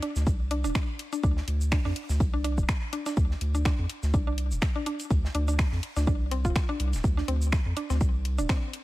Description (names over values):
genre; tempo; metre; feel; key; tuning
minimal techno; 124 BPM; 4/4; swing 55% on 16ths; D minor; A4 = 440 Hz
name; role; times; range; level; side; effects
mallet-like synth pluck; riff; 0.0-8.5 s; C4 to F4; -34 LUFS; equal; chorus, cassette tape, sidechain pumping, ping-pong delay
house drum kit; drums; 0.0-8.8 s; finger snaps, hi-hat, shaker; -36 LUFS; left 1 dB; overdrive
modern studio drum kit; drums; 0.0-8.8 s; hi-hat, ride cymbal, snare drum; -46 LUFS; equal; sidechain pumping on cymbals, high-pass filter on cymbals, sidechain pumping on hats, high-pass filter on hats, high-pass filter on snare, high-pass filter on room
round analog bass; bass; 0.2-8.5 s; D1 to F2; -27 LUFS; equal; sidechain pumping
electronic kick drum; drums; 0.3-8.6 s; none; -26 LUFS; equal; overdrive
room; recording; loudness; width
small room reverb; none; -25 LUFS; side -17 dB against mid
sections
0.0-8.8 A section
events
none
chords
none